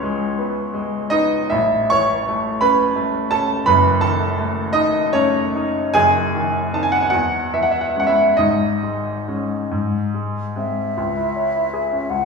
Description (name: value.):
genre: classical, romantic duo for flute and grand piano.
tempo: 44-58 BPM (dotted quarters).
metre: 6/8.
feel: rubato.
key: C# minor.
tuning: A4 = 441 Hz.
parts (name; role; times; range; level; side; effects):
clear baby grand piano; accompaniment; 0.0-12.2 s; F#1 to C#6; -17 LUFS; equal; none.
mellow hollow concert flute; melody; 10.6-12.2 s; E5 to F#5; -21 LUFS; left 1 dB; none.
room: wet recital hall reverb, RT60 1.4 s.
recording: recorded in a church or concert hall, small room ambience.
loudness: -16 LUFS.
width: side -4 dB against mid.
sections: 0.0-11.0 A section; 11.0-12.2 B section.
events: none.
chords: 0.0 C#m7; 1.5 A; 3.7 D#dim/F#; 6.0 G#7/F#; 7.1 C#m/E; 8.4 G#sus4; 9.7 G#; 11.0 C#m.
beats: 0.38 | 1.52 2.62 | 3.67 4.75 | 5.96 7.12 | 8.38 9.72 | 10.97 12.10.